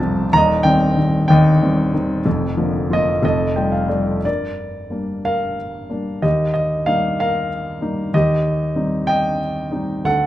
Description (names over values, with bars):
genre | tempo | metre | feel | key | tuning
classical, lyrical solo piano | 62 BPM (dotted quarters) | 6/8 | rubato | G minor from 4.2 s | A4 = 440 Hz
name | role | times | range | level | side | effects
warm grand piano | solo | 0.0-10.3 s | Eb1 to Bb5 | -16 LUFS | equal | none
room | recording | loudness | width
moderate recital hall reverb, RT60 1.8 s | dark, warm production | -16 LUFS | side -14 dB against mid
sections
0.0-4.2 A section; 4.2-10.3 B section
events
grand piano fill 3.2-4.2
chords
0.3 Cm/Eb; 2.3 Bb/F; 3.2 Fadd9; 4.2 Gm; 6.2 Eb; 8.1 Cm/Eb